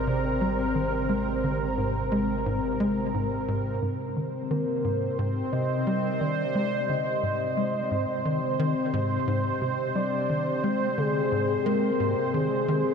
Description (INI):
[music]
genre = ambient, sequencer-driven space music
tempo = 88 BPM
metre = 4/4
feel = straight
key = Ab lydian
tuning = A4 = 440 Hz
[part]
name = soft octave-layered synth lead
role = melody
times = 0.0-12.9 s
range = Ab4 to Eb5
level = -31 LUFS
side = left 1 dB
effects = chorus, cassette tape, analog delay
[part]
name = sweeping resonant pad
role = sustained chords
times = 0.0-12.9 s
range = C3 to C5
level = -28 LUFS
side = equal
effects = chorus
[part]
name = warm sub bass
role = bass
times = 0.0-3.8 s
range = Ab1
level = -34 LUFS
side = equal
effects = tube saturation
[part]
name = tight sequencer bass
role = riff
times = 0.1-12.8 s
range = Ab2 to Ab3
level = -29 LUFS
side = equal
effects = analog chorus, analog delay
[sound]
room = wet huge ambient reverb, RT60 7.1 s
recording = dreamy mix soaked in reverb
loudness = -24 LUFS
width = side -6 dB against mid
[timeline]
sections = 0.0-3.8 A section; 3.8-12.9 B section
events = none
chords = 0.0 Ab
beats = 0.41 | 1.09 1.77 2.46 3.14 | 3.82 4.50 5.18 5.87 | 6.55 7.23 7.91 8.59 | 9.27 9.96 10.64 11.32 | 12.00 12.68